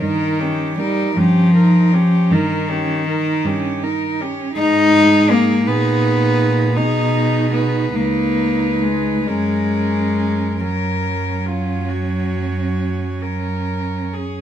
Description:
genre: classical, lyrical piece for cello ensemble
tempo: 44-55 BPM (dotted quarters)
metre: 12/8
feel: rubato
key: F# major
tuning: A4 = 440 Hz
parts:
  - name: warm cello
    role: melody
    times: 0.0-14.4 s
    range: E#4 to B4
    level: -26 LUFS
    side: left 4 dB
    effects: none
  - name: dark cello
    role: second line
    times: 0.0-14.3 s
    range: C#4 to D#4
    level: -24 LUFS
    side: right 8 dB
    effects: none
  - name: warm cello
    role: accompaniment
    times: 0.0-14.1 s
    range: D#3 to D#4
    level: -17 LUFS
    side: left 2 dB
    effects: none
  - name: dark cello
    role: bass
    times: 0.0-14.4 s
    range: C#2 to B2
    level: -22 LUFS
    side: right 2 dB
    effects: none
room: light reverb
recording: minimal, uncompressed stereo recording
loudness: -15 LUFS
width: side -10 dB against mid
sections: 0.0-14.4 A section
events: none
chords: 0.0 D#7/G; 4.6 G#m; 6.8 G#m/B; 8.0 C#sus2; 9.3 F#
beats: | 0.02 1.17 2.31 3.45 | 4.58 5.67 6.77 7.95 | 9.27 10.60 11.90 13.23

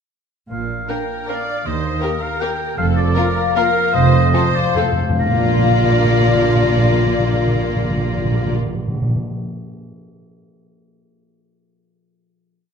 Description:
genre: classical, orchestral ballroom waltz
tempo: 132-171 BPM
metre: 3/4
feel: rubato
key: Bb major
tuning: A4 = 440 Hz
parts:
  - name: clear oboe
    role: second line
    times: 0.5-8.5 s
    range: Bb4 to G5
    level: -24 LUFS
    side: right 2 dB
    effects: none
  - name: concert harp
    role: arpeggios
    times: 0.5-9.4 s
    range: Bb2 to Bb5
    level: -23 LUFS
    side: left 11 dB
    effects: none
  - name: dark symphonic cello section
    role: bass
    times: 0.5-8.5 s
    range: Eb2 to Bb2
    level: -22 LUFS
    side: right 2 dB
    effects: none
  - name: warm studio double bass section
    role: bass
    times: 0.5-8.5 s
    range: F1 to Eb2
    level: -22 LUFS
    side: right 4 dB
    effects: none
  - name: warm symphonic violin section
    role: melody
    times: 0.9-8.5 s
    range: A4 to D5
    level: -25 LUFS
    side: left 5 dB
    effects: none
  - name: warm symphonic violin section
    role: second line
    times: 0.9-8.5 s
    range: Bb3 to G4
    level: -26 LUFS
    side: left 5 dB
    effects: none
  - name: rich symphonic viola section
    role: accompaniment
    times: 0.9-8.5 s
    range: Bb3 to D5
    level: -25 LUFS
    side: right 2 dB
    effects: none
  - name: mellow French horn section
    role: sustained chords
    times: 0.9-8.5 s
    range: A3 to G4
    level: -25 LUFS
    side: left 2 dB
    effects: none
  - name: timpani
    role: percussion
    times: 3.9-9.2 s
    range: F2 to Bb2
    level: -21 LUFS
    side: equal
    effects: none
room: wet recital hall reverb, RT60 1.7 s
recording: none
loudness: -15 LUFS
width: side -6 dB against mid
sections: 0.5-5.2 A section; 5.2-7.8 final chord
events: slowing down 2.2-5.2; timpani fill 3.9-5.2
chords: 0.5 Bb; 1.7 Eb; 2.8 Bb/F; 3.9 F7; 5.2 Bb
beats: | 0.50 0.90 1.29 | 1.66 2.02 2.41 | 2.78 3.16 3.56 | 3.94 4.34 4.77 | 5.20 5.62 6.06 | 6.48 6.92 7.36

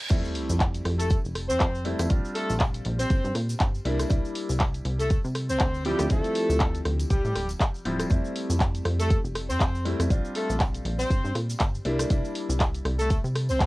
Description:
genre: filtered disco house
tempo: 120 BPM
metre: 4/4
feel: swing 57% on 16ths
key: F major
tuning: A4 = 440 Hz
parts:
  - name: riser, reverse cymbal and sub drop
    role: sound effects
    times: 0.0-2.1 s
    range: none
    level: -37 LUFS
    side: equal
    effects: none
  - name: bright grand piano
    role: accompaniment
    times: 0.1-13.7 s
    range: F3 to F4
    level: -33 LUFS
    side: left 1 dB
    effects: phaser, sidechain pumping, cassette tape
  - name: plucky analog bass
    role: bass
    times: 0.1-13.7 s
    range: D1 to C3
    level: -28 LUFS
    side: equal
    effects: sidechain pumping, high-pass filter
  - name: electronic kick drum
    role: drums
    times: 0.1-13.7 s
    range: none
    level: -24 LUFS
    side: equal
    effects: none
  - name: house drum kit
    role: drums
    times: 0.1-13.7 s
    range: crash cymbal, handclaps, hi-hat, rim click, shaker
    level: -31 LUFS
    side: equal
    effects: sidechain pumping on hats, sidechain pumping on perc, sidechain pumping on cymbals
  - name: tambourine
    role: percussion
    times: 0.1-13.7 s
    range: none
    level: -48 LUFS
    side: left 2 dB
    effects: none
  - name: clear horn section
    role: melody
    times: 1.0-13.7 s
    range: G3 to C5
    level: -29 LUFS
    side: equal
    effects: sidechain pumping, cassette tape
room: light reverb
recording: home recording on cassette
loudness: -23 LUFS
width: side -20 dB against mid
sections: 0.1-13.7 A section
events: drop 0.1-13.7; impact 0.1-2.1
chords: 0.1 Fmaj7; 2.1 Bb69; 3.9 C9; 5.9 Dm11; 8.1 Fmaj7; 10.1 Bb69; 11.9 C9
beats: | 0.10 0.60 1.10 1.60 | 2.10 2.60 3.10 3.60 | 4.10 4.60 5.10 5.60 | 6.10 6.60 7.10 7.60 | 8.10 8.60 9.10 9.60 | 10.10 10.60 11.10 11.60 | 12.10 12.60 13.10 13.60

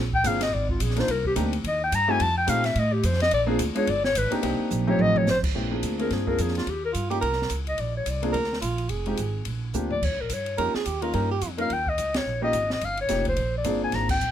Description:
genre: jazz, small-group swing and bop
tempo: 215 BPM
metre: 4/4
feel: swing 59% on 8ths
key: Bb mixolydian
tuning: A4 = 440 Hz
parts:
  - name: upright bass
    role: bass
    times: 0.0-14.3 s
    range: F1 to Bb2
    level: -28 LUFS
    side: right 1 dB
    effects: none
  - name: mellow clarinet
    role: melody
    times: 0.1-14.3 s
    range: F4 to Bb5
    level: -25 LUFS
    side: left 2 dB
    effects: none
  - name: open jazz drum kit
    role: drums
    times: 0.1-14.3 s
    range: crash cymbal, hi-hat, kick drum, ride cymbal, snare drum, toms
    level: -31 LUFS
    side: right 1 dB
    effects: none
  - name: warm concert grand piano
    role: accompaniment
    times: 0.2-14.1 s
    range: Ab3 to Bb4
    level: -28 LUFS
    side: left 1 dB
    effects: none
  - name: breathy tenor saxophone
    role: second line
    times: 6.9-11.5 s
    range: F4 to Bb4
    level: -28 LUFS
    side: right 5 dB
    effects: none
room: light reverb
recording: close, detailed microphones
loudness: -22 LUFS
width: side -10 dB against mid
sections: 0.0-5.5 A section; 5.5-14.3 B section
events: clarinet solo 0.0-5.5; drum fill 4.7-5.3, 9.7; band accent 12.1, 14.1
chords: 0.0 Bb9; 1.1 Cm7; 2.2 F9; 3.3 Bb9; 3.9 G5; 4.4 Cm7; 5.0 F9; 5.5 Bb9; 6.7 Eb7; 7.8 Bbadd9; 8.9 Fm7; 9.5 Bbadd9; 10.0 Eb9; 13.4 Bb9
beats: 0.24 0.52 0.80 | 1.08 1.36 1.64 1.92 | 2.20 2.48 2.76 3.04 | 3.32 3.60 3.87 4.15 | 4.43 4.71 4.99 5.27 | 5.55 5.83 6.11 6.39 | 6.67 6.95 7.23 7.51 | 7.79 8.07 8.35 8.62 | 8.90 9.18 9.46 9.74 | 10.02 10.30 10.58 10.86 | 11.14 11.42 11.70 11.98 | 12.26 12.54 12.81 13.09 | 13.37 13.65 13.93 14.21

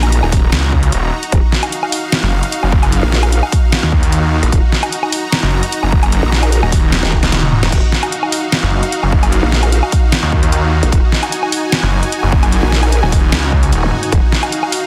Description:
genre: heavy wobble dubstep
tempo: 150 BPM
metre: 4/4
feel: half-time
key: Eb minor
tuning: A4 = 440 Hz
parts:
  - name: supersaw pad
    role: sustained chords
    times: 0.0-14.9 s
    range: Eb4 to Bb5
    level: -23 LUFS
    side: equal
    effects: sidechain pumping
  - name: growl bass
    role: bass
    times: 0.0-14.2 s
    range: Eb1 to Bb1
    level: -16 LUFS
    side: equal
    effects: chorus, overdrive
  - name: dubstep drum kit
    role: drums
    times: 0.0-14.8 s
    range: crash cymbal, hi-hat, snare drum, toms, woodblock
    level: -20 LUFS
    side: equal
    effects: overdrive
  - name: snarling distorted saw bass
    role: bass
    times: 0.2-13.9 s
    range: Eb1 to Eb2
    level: -17 LUFS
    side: equal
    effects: overdrive
  - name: electronic kick drum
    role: drums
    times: 0.3-14.2 s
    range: none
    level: -16 LUFS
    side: equal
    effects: overdrive
  - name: zap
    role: sound effects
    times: 13.8-13.9 s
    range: none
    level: -26 LUFS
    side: equal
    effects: none
room: light reverb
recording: dense, heavily limited modern master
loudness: -14 LUFS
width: mono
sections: 0.0-14.9 A section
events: drum fill 6.9-7.7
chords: 0.0 Ebmadd9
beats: 0.12 0.52 0.92 | 1.32 1.72 2.12 2.52 | 2.92 3.32 3.72 4.12 | 4.52 4.92 5.32 5.72 | 6.12 6.52 6.92 7.32 | 7.72 8.12 8.52 8.92 | 9.32 9.72 10.12 10.52 | 10.92 11.32 11.72 12.12 | 12.52 12.92 13.32 13.72 | 14.12 14.52

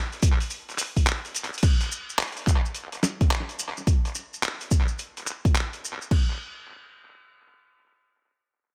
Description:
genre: glitch hop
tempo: 107 BPM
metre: 4/4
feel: swing 64% on 16ths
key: none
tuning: none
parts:
  - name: boom bap sampler-style drum kit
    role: drums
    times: 0.1-6.3 s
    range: crash cymbal, handclaps, hi-hat, snare drum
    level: -32 LUFS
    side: equal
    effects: studio reverb, analog delay
  - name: maracas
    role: percussion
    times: 0.1-6.1 s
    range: none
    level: -36 LUFS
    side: equal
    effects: none
  - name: electronic kick drum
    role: drums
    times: 0.2-6.3 s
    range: none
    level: -24 LUFS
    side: equal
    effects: studio reverb
room: little or no reverb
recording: echo-heavy mix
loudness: -26 LUFS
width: mono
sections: 0.0-1.6 A section; 1.6-6.1 B section; 6.1-8.4 C section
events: drop 0.0-1.6; kick drops out 1.1-1.6; drum fill 1.3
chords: none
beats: 0.51 1.07 | 1.63 2.19 2.75 3.31 | 3.87 4.43 4.99 5.55 | 6.11

